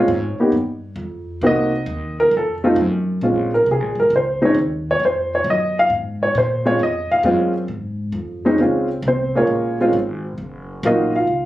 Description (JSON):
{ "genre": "jazz piano trio", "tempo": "134 BPM", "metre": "4/4", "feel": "swing 68% on 8ths", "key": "Bb minor", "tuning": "A4 = 440 Hz", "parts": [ { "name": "dark baby grand piano", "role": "melody", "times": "0.0-11.5 s", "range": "Gb3 to F5", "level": "-16 LUFS", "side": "equal", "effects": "none" }, { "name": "upright bass", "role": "bass", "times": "0.0-11.5 s", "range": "Gb1 to Bb2", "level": "-26 LUFS", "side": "equal", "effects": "none" } ], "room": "light reverb", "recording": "recorded on a phone in the room, club reverb, compression", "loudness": "-16 LUFS", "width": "side -15 dB against mid", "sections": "0.0-3.2 A section; 3.2-11.5 A section", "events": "grand piano solo 0.0-3.2, 3.2-11.5", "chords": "0.0 Bbm7; 0.5 Fsus2; 1.4 Cm7b5; 2.3 F(b9); 3.2 Bbm7; 10.4 Ebm7" }